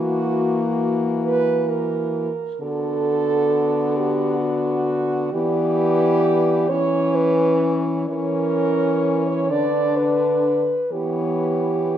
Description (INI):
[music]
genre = classical, lyrical piece for horn quartet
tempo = 43 BPM (dotted quarters)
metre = 6/8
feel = rubato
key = B minor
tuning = A4 = 440 Hz
[part]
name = warm French horn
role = melody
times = 0.0-12.0 s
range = F#4 to D5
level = -27 LUFS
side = left 6 dB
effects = none
[part]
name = mellow French horn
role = second line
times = 0.0-12.0 s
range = F#4 to D5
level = -21 LUFS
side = right 3 dB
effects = none
[part]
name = warm French horn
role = accompaniment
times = 0.0-12.0 s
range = A#3 to D4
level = -26 LUFS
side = left 5 dB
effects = none
[part]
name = clear French horn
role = bass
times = 0.0-12.0 s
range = D3 to E3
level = -24 LUFS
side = equal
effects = none
[sound]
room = moderate concert hall reverb, RT60 1.9 s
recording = none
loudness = -18 LUFS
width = side -10 dB against mid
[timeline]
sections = 0.0-12.0 A section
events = none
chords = 0.0 F#7/E; 2.6 Bm/D; 5.3 Em; 6.7 A#dim/E; 9.5 Bm/D; 10.9 C#dim/E